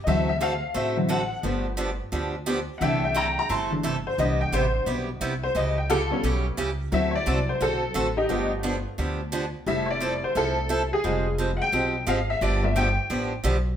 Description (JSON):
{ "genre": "country, western swing", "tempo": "175 BPM", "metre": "4/4", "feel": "swing 63% on 8ths", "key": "C major", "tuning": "A4 = 440 Hz", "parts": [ { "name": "honky-tonk upright piano", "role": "accompaniment", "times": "0.0-13.4 s", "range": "B2 to C6", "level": "-25 LUFS", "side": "left 2 dB", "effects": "none" }, { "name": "picked acoustic archtop guitar", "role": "accompaniment", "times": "0.1-13.6 s", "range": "C3 to A4", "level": "-28 LUFS", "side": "right 2 dB", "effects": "none" }, { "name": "upright bass", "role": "bass", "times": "0.1-13.7 s", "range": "F1 to D2", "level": "-29 LUFS", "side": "equal", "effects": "none" } ], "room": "wet studio reverb, RT60 0.8 s", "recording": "band playing live in one room", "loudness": "-23 LUFS", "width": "side -9 dB against mid", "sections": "0.0-13.8 A section", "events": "honky-tonk piano solo 0.0-13.8", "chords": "0.1 D7; 1.4 G7; 2.8 C6; 4.2 Cmaj7; 5.6 A7/C#; 6.9 D7; 8.3 G7; 9.7 Fmaj7; 11.0 Fmadd9; 12.4 G7" }